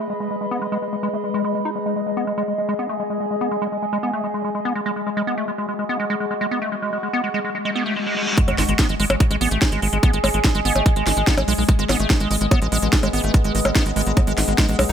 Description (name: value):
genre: psychedelic trance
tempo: 145 BPM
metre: 4/4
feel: straight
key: G# minor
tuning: A4 = 440 Hz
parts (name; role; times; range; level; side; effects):
- evolving wavetable pad; sustained chords; 0.0-14.9 s; G#3 to B4; -27 LUFS; left 1 dB; phaser, built-in reverb, sidechain pumping
- liquid acid bass; riff; 0.0-14.9 s; G#3 to D#4; -24 LUFS; equal; chorus, auto-pan, sidechain pumping, tape echo
- warbly tape-like pad; texture; 0.0-14.9 s; G#3 to D#6; -29 LUFS; left 1 dB; chorus, built-in reverb, phaser, sidechain pumping
- reverse cymbal and sub drop; sound effects; 7.7-10.0 s; none; -29 LUFS; left 1 dB; none
- electronic kick drum; drums; 8.4-14.7 s; none; -17 LUFS; equal; none
- techno drum kit; drums; 8.4-14.9 s; hi-hat, percussion blips, snare drum; -23 LUFS; equal; none
- tight sequencer bass; bass; 8.5-14.9 s; G#1 to B1; -23 LUFS; equal; none
room: light reverb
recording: none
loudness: -18 LUFS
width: side -8 dB against mid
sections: 0.0-8.4 A section; 8.4-14.9 B section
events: filter sweep on acid bass 0.0-8.4; filter sweep on ambient pad 0.0-8.4; reverse cymbal 7.7-8.4; drop 8.4-14.9; impact 8.4-10.0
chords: 0.0 G#5